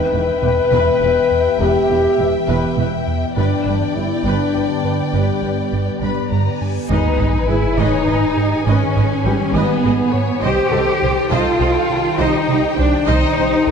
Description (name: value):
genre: cinematic, hybrid orchestral and electronic film score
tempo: 68 BPM (dotted quarters)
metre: 6/8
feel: straight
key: G# harmonic minor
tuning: A4 = 440 Hz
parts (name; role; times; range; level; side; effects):
- rich symphonic violin section; melody; 0.0-13.7 s; G5 to B5; -29 LUFS; left 6 dB; none
- warm symphonic violin section; second line; 0.0-13.7 s; G4 to E5; -26 LUFS; left 4 dB; none
- rich symphonic viola section; accompaniment; 0.0-13.4 s; G4 to D#5; -27 LUFS; equal; none
- ethereal airy pad; sustained chords; 0.0-13.7 s; D3 to C5; -25 LUFS; left 1 dB; ensemble chorus, built-in reverb
- warm French horn section; sustained chords; 0.0-13.7 s; G3 to B4; -20 LUFS; left 4 dB; none
- felt-muted upright piano; texture; 0.0-13.7 s; G3 to E5; -29 LUFS; left 3 dB; none
- chorused synth bass; riff; 0.1-13.7 s; C2 to G#2; -23 LUFS; right 2 dB; none
- rich symphonic cello section; bass; 0.1-13.7 s; E2 to G4; -21 LUFS; right 2 dB; none
- rich symphonic double bass section; bass; 0.1-13.5 s; E1 to C2; -23 LUFS; right 4 dB; none
- reverse cymbal and sub drop; sound effects; 6.8-8.7 s; none; -23 LUFS; left 1 dB; none
room: wet concert hall reverb, RT60 2.4 s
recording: dark, warm production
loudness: -14 LUFS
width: side -6 dB against mid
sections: 0.0-6.9 A section; 6.9-13.7 A section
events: reverse cymbal 6.8; impact 6.9-8.7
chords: 0.0 Em; 3.4 G; 6.9 G#m; 10.4 Cm